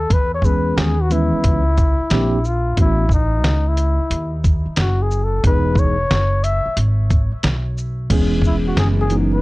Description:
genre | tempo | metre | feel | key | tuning
hip hop, jazz-hop | 90 BPM | 4/4 | swing 65% on 16ths | E major | A4 = 440 Hz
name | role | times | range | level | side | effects
breathy flugelhorn | melody | 0.0-9.4 s | D#4 to E5 | -23 LUFS | left 2 dB | tape echo
upright bass | bass | 0.0-9.4 s | E1 to E2 | -19 LUFS | equal | none
dusty soul sampler-style drum kit | drums | 0.1-9.3 s | crash cymbal, hi-hat, kick drum, shaker, snare drum | -18 LUFS | equal | none
mellow tine electric piano | accompaniment | 0.4-9.4 s | E3 to B4 | -20 LUFS | right 1 dB | fast stereo tremolo
room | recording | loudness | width
little or no reverb | dry, gritty hardware recording, cassette tape | -15 LUFS | side -20 dB against mid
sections
0.0-8.1 A section; 8.1-9.4 B section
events
flugelhorn solo 0.0-8.1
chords
0.0 E6; 2.1 A#69; 2.8 A6; 5.4 Emaj7; 8.1 E6

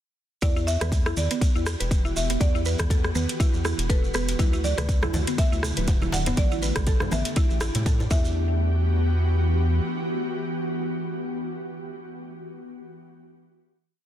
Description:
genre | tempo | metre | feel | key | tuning
afro house | 121 BPM | 4/4 | swing 56% on 16ths | E minor | A4 = 440 Hz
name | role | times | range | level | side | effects
buzzing marimba with medium hard mallets | melody | 0.4-12.2 s | B4 to F#5 | -34 LUFS | right 1 dB | digital delay
ethereal airy pad | sustained chords | 1.3-12.2 s | D3 to G4 | -32 LUFS | equal | ensemble chorus, built-in reverb, sidechain pumping
mallet-like synth pluck | arpeggios | 0.4-8.6 s | B3 to B4 | -32 LUFS | right 1 dB | chorus, sidechain pumping, digital delay
round analog bass | bass | 0.4-9.8 s | D1 to A2 | -25 LUFS | equal | sidechain pumping
afro-pop drum kit | drums | 0.4-8.0 s | hi-hat, rim click, toms | -31 LUFS | left 1 dB | small room ambience, soft clipping on snare
electronic kick drum | drums | 0.4-8.2 s | none | -22 LUFS | equal | small room ambience
shekere | percussion | 0.4-8.3 s | none | -36 LUFS | right 4 dB | none
congas | percussion | 4.4-8.2 s | none | -36 LUFS | right 6 dB | none
djembe | percussion | 5.0-8.2 s | none | -34 LUFS | left 2 dB | none
room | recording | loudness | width
small room ambience | dense, heavily limited modern master | -22 LUFS | side -11 dB against mid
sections
0.4-8.4 drop; 8.4-12.3 final hit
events
drop 0.4-8.4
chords
0.4 Em7; 4.4 D6; 6.4 A7sus4; 8.1 Em

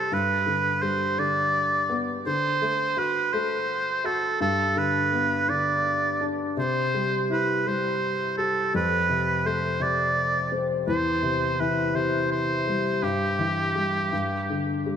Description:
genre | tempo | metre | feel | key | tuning
children's music, lullaby | 56 BPM (dotted quarters) | 6/8 | rubato | C major | A4 = 438 Hz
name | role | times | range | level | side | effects
clear oboe | melody | 0.0-14.9 s | G4 to D5 | -24 LUFS | right 2 dB | analog delay
felt-muted upright piano | accompaniment | 0.0-15.0 s | E2 to G4 | -27 LUFS | left 2 dB | lush chorus
room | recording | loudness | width
wet plate reverb, RT60 3.1 s | dreamy mix soaked in reverb | -22 LUFS | side -8 dB against mid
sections
0.0-15.0 A section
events
none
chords
0.1 G; 2.3 D7; 4.4 G; 6.6 C; 8.7 F; 10.9 C/E; 13.0 Em/G; 14.1 G5

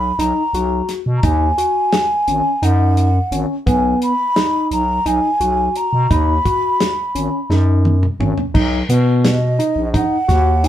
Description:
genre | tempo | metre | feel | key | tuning
progressive instrumental, band music in an uneven meter | 172 BPM (eighths) | 7/8 | straight | B major | A4 = 440 Hz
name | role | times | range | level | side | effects
mellow hollow baroque flute | melody | 0.0-10.7 s | D#5 to B5 | -18 LUFS | right 1 dB | none
growling FM bass | bass | 0.0-10.7 s | G#1 to B2 | -17 LUFS | equal | none
barky tine electric piano | arpeggios | 0.2-10.7 s | B3 to F#4 | -20 LUFS | left 1 dB | medium stereo tremolo
warm soul drum kit | drums | 0.2-10.7 s | crash cymbal, hi-hat, kick drum, snare drum, toms | -20 LUFS | equal | none
room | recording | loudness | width
moderate studio reverb, RT60 0.6 s | band playing live in one room | -14 LUFS | side -11 dB against mid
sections
0.0-8.5 A section; 8.5-10.7 B section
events
drum fill 7.5-8.5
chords
0.0 B6; 8.5 Bmaj7

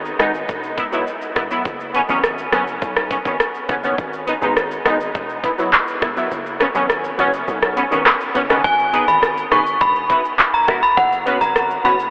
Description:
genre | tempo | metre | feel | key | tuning
dancehall | 103 BPM | 4/4 | straight | G# minor | A4 = 441 Hz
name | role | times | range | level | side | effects
hard-hitting 808-style bass | bass | 0.0-12.1 s | E1 to B1 | -30 LUFS | equal | none
island pop drum kit | drums | 0.1-12.1 s | handclaps, hi-hat, kick drum, rim click, shaker | -20 LUFS | equal | overdrive
synth brass stab | accompaniment | 0.2-12.0 s | D#3 to B4 | -19 LUFS | equal | chorus, phaser
synth chime | melody | 8.6-12.0 s | F#5 to C#6 | -15 LUFS | equal | ensemble chorus, tape echo
room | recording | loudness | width
wet huge ambient reverb, RT60 8.7 s | dreamy mix soaked in reverb, telephone sound | -15 LUFS | side -31 dB against mid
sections
0.0-8.6 A section; 8.6-12.1 B section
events
kick muted 6.3-8.6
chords
0.5 Esus2; 1.7 F#sus4; 2.8 Badd9; 4.0 G#m; 5.1 Esus2; 6.3 F#sus4; 7.5 Badd9; 8.6 G#m; 9.8 Esus2; 11.0 F#sus4

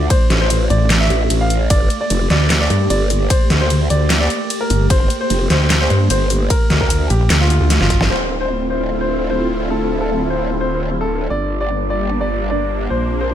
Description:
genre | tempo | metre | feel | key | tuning
heavy wobble dubstep | 150 BPM | 4/4 | half-time | unclear | A4 = 440 Hz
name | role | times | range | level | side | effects
warm baby grand piano | melody | 0.0-13.3 s | F4 to F5 | -22 LUFS | equal | digital delay
supersaw pad | sustained chords | 0.0-13.3 s | D3 to G4 | -23 LUFS | equal | phaser, sidechain pumping, low-pass filter
growl bass | bass | 0.0-13.3 s | D1 to D2 | -18 LUFS | equal | chorus, overdrive
dubstep drum kit | drums | 0.1-8.1 s | handclaps, hi-hat, ride cymbal, snare drum | -20 LUFS | equal | none
electronic kick drum | drums | 0.1-8.0 s | none | -16 LUFS | equal | none
pulsing pluck wobble bass | bass | 0.7-8.1 s | G1 to G2 | -14 LUFS | equal | chorus, overdrive
zap | sound effects | 8.0-8.1 s | none | -28 LUFS | equal | none
room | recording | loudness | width
digital ambience | none | -14 LUFS | side -10 dB against mid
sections
0.0-8.1 A section; 8.1-13.3 B section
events
drop 0.0-8.1; drum fill 7.7-8.1; band accent 8.0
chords
0.0 Dm; 1.7 Gmadd9; 8.1 Dm7; 11.3 Gm

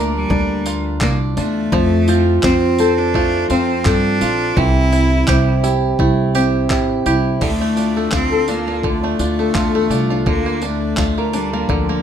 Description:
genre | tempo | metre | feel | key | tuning
acoustic pop | 84 BPM | 4/4 | swing 55% on 16ths | unclear | A4 = 440 Hz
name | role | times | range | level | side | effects
bright cello | melody | 0.0-12.0 s | F3 to E4 | -21 LUFS | left 1 dB | none
fingerpicked steel-string acoustic guitar | accompaniment | 0.0-12.0 s | C3 to Bb4 | -18 LUFS | equal | none
bluegrass banjo | arpeggios | 0.0-12.0 s | D3 to G4 | -26 LUFS | right 6 dB | none
upright bass | bass | 0.0-12.0 s | A1 to G2 | -20 LUFS | equal | none
boom bap sampler-style drum kit | drums | 0.3-11.9 s | crash cymbal, handclaps, kick drum, tambourine | -22 LUFS | equal | overdrive
room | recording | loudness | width
light reverb | none | -14 LUFS | side -9 dB against mid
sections
0.0-7.4 A section; 7.4-12.0 B section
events
none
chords
0.0 Bb/D; 1.7 F; 4.6 C6; 7.4 Dm; 10.3 Bb/D

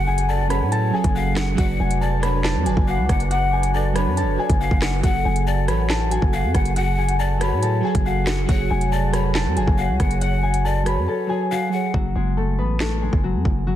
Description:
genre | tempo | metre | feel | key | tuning
hip hop, drill | 139 BPM | 4/4 | half-time | F# harmonic minor | A4 = 441 Hz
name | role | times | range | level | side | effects
concert harp | melody | 0.0-13.8 s | F#3 to B5 | -25 LUFS | left 3 dB | ping-pong delay
breathy large pan pipes | second line | 0.0-11.9 s | C#5 to F#5 | -29 LUFS | left 6 dB | ping-pong delay
glassy digital keys | accompaniment | 0.0-12.0 s | F#3 to D5 | -26 LUFS | right 4 dB | chorus
large flute ensemble | sustained chords | 0.0-11.9 s | D4 to G#5 | -33 LUFS | right 3 dB | none
growling 808-style bass | bass | 0.0-13.8 s | E#1 to A2 | -22 LUFS | equal | none
drill drum kit | drums | 0.2-13.6 s | handclaps, hi-hat, kick drum, rim click, snare drum | -23 LUFS | equal | vintage 12-bit sampler grit
room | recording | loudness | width
little or no reverb | dense, heavily limited modern master | -18 LUFS | side -12 dB against mid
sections
0.0-11.9 A section; 11.9-13.8 B section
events
silent gap 11.1-11.9; hi-hats muted 11.9-13.8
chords
0.0 F#madd9; 1.6 Bm; 5.0 F#madd9; 8.5 C#sus4; 11.9 F#madd9

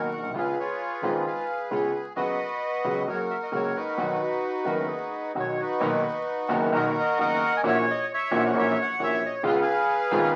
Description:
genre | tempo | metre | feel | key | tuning
tango | 132 BPM | 4/4 | rubato | B major | A4 = 439 Hz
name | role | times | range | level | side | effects
bandoneon | melody | 0.0-10.4 s | D#4 to G#5 | -29 LUFS | equal | none
warm concert grand piano | accompaniment | 0.0-10.3 s | F#1 to F#4 | -29 LUFS | equal | none
dark studio string section | stabs | 0.0-10.3 s | A#3 to A#4 | -37 LUFS | equal | none
upright bass | bass | 0.0-10.4 s | F#1 to C#2 | -48 LUFS | equal | none
warm clarinet | second line | 4.2-5.8 s | F#4 to A#4 | -35 LUFS | equal | none
room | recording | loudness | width
wet studio reverb, RT60 0.5 s | very old 78 rpm record, vinyl crackle | -26 LUFS | mono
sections
0.0-5.8 A section; 5.8-10.4 A section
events
none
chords
0.4 C#7; 2.2 F#sus4; 3.1 F#; 4.0 B; 5.8 Bmaj7; 7.6 F#7/A#; 9.4 C#7

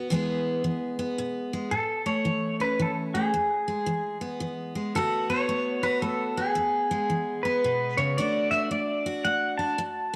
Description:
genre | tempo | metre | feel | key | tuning
country | 112 BPM | 3/4 | swing 63% on 8ths | A major | A4 = 440 Hz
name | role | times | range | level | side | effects
picked steel-string acoustic guitar | accompaniment | 0.0-10.2 s | E2 to G#4 | -31 LUFS | equal | none
pedal steel guitar | melody | 1.7-10.2 s | G#4 to A5 | -28 LUFS | equal | none
room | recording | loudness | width
moderate lush hall reverb, RT60 2.4 s | home recording on cassette | -27 LUFS | mono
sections
0.0-1.7 A section; 1.7-10.2 B section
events
none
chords
0.1 E; 1.7 A; 3.3 E; 4.9 D6; 6.6 E; 8.2 D

